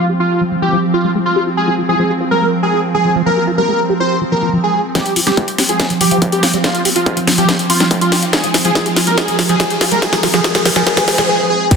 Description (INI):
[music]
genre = psychedelic trance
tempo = 142 BPM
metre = 4/4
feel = straight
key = F minor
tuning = A4 = 440 Hz
[part]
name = wide unison lead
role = melody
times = 0.0-11.8 s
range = F4 to C5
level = -16 LUFS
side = equal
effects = phaser, sidechain pumping, ping-pong delay
[part]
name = evolving wavetable pad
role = sustained chords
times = 0.0-11.8 s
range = F3 to C4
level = -19 LUFS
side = right 2 dB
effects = ensemble chorus, built-in reverb, vintage 12-bit sampler grit, sidechain pumping
[part]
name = liquid acid bass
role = riff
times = 0.1-11.8 s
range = F3 to G4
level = -20 LUFS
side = moving between left 6 dB and right 5 dB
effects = phaser, auto-pan, sidechain pumping, digital delay
[part]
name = electronic kick drum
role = drums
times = 5.0-11.8 s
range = none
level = -18 LUFS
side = equal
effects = distortion, high-pass filter on kick
[part]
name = techno drum kit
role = drums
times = 5.0-11.8 s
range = crash cymbal, hi-hat, snare drum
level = -15 LUFS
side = left 1 dB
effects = soft clipping on snare
[part]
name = riser and impact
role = sound effects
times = 6.8-11.8 s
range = none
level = -23 LUFS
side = left 1 dB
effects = none
[sound]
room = wet lush hall reverb, RT60 1.9 s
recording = dense, heavily limited modern master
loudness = -12 LUFS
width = side -5 dB against mid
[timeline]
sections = 0.0-5.0 A section; 5.0-11.7 B section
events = filter sweep on acid bass 0.0-5.0, 5.0-11.7; filter sweep on ambient pad 0.0-5.0; build-up 5.0-11.7; drum fill 5.0-11.3; riser 6.8-11.3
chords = 0.0 F5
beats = 0.30 0.73 1.15 | 1.57 1.99 2.42 2.84 | 3.26 3.68 4.11 4.53 | 4.95 5.37 5.80 6.22 | 6.64 7.06 7.49 7.91 | 8.33 8.75 9.18 9.60 | 10.02 10.44 10.87 11.29 | 11.71